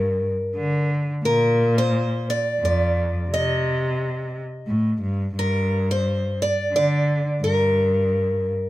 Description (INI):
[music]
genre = acoustic folk-pop ballad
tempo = 88 BPM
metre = 3/4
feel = straight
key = unclear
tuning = A4 = 440 Hz
[part]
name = picked acoustic archtop guitar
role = melody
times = 0.0-8.7 s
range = Bb4 to Eb5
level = -22 LUFS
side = equal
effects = plate reverb
[part]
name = rich cello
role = bass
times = 0.0-8.5 s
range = F2 to D3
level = -22 LUFS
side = equal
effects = none
[sound]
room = light reverb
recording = none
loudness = -19 LUFS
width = side -16 dB against mid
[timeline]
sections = 0.0-8.7 A section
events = none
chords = 0.0 Gm; 1.3 Bb; 3.3 Cm; 5.4 Gm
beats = 0.57 | 1.25 1.93 2.62 | 3.30 3.98 4.67 | 5.36 6.04 6.73 | 7.41 8.09